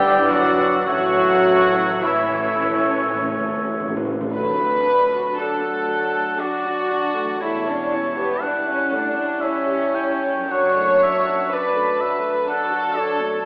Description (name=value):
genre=classical, slow romantic movement for symphony orchestra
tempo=51-62 BPM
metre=3/4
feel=rubato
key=D major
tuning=A4 = 440 Hz
part: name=warm symphonic violin section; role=melody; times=0.0-13.4 s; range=E5 to A5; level=-33 LUFS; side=equal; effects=none
part: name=clear oboe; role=second line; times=0.0-13.5 s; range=C#5 to G5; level=-27 LUFS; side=equal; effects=none
part: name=mellow hollow concert flute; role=second line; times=0.0-13.5 s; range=B4 to E6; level=-29 LUFS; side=equal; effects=none
part: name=warm symphonic violin section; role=second line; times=0.0-13.5 s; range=B3 to C#5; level=-25 LUFS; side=equal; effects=none
part: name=dark symphonic viola section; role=accompaniment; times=0.0-13.5 s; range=E3 to G4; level=-30 LUFS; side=equal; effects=none
part: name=warm bassoon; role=accompaniment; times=0.0-3.9 s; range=A3 to B3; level=-30 LUFS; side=equal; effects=none
part: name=mellow French horn section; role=sustained chords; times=0.0-13.5 s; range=E3 to E4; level=-29 LUFS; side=equal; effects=none
part: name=concert harp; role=arpeggios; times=0.0-13.5 s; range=F#2 to B5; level=-41 LUFS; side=equal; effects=none
part: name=dark trumpet section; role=stabs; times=0.0-3.2 s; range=E4 to G4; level=-27 LUFS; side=equal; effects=none
part: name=warm studio double bass section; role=bass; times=0.0-11.4 s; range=E1 to D2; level=-43 LUFS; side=equal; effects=none
part: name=warm symphonic cello section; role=bass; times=0.0-11.4 s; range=D2 to G3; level=-36 LUFS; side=equal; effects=none
part: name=timpani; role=percussion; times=0.9-4.3 s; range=A2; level=-32 LUFS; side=equal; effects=none
room=wet scoring stage reverb, RT60 1.8 s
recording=vinyl crackle, telephone sound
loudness=-20 LUFS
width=mono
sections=0.0-4.3 A section; 4.3-13.5 B section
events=timpani fill 0.9-4.3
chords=0.0 Em7/G; 0.9 A; 4.3 D; 7.4 A7/E; 10.5 D/F#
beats=| 0.87 2.04 3.19 | 4.33 5.37 6.39 | 7.42 8.42 9.41 | 10.50 11.51 12.48